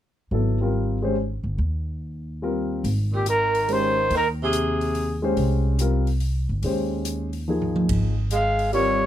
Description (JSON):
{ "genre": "modal jazz", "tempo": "143 BPM", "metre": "3/4", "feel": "swing 67% on 8ths", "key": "Ab major", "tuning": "A4 = 440 Hz", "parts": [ { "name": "warm concert grand piano", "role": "accompaniment", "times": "0.3-9.0 s", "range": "F3 to C5", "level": "-25 LUFS", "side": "left 2 dB", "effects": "none" }, { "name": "upright bass", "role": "bass", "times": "0.3-9.1 s", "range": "G1 to Eb2", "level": "-25 LUFS", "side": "equal", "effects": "none" }, { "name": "open jazz drum kit", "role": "drums", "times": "2.8-8.9 s", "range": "hi-hat, kick drum, ride cymbal, toms", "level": "-31 LUFS", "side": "right 1 dB", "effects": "none" }, { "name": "mellow tenor saxophone", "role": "second line", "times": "3.1-5.2, 8.3-9.1 s", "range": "Bb2 to Ab3", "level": "-26 LUFS", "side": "right 2 dB", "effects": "none" }, { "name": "warm trumpet", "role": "melody", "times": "3.2-5.2, 8.3-9.1 s", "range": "G4 to F5", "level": "-22 LUFS", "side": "equal", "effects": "none" } ], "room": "light reverb", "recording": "close, detailed microphones", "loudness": "-21 LUFS", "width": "side -11 dB against mid", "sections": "0.3-2.8 A section; 2.8-9.1 B section", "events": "drum fill 7.5-7.9", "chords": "0.3 Abmaj9", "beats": "| 0.31 0.73 1.16 | 1.58 2.00 2.42 | 2.84 3.27 3.69 | 4.11 4.53 4.95 | 5.37 5.79 6.21 | 6.63 7.05 7.47 | 7.89 8.31 8.73" }